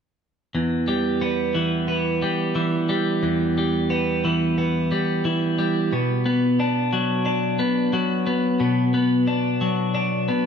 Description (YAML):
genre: rock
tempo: 89 BPM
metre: 4/4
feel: straight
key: unclear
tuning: A4 = 440 Hz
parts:
  - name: twelve-string electric guitar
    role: arpeggios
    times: 0.5-10.5 s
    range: E2 to D4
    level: -20 LUFS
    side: equal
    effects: analog delay
room: moderate lush hall reverb, RT60 1.8 s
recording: none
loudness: -20 LUFS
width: side -7 dB against mid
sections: 0.5-10.5 A section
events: none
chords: 0.5 Em; 5.9 Bm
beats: | 0.55 1.22 1.89 2.56 | 3.24 3.91 4.58 5.25 | 5.92 6.59 7.26 7.94 | 8.61 9.28 9.95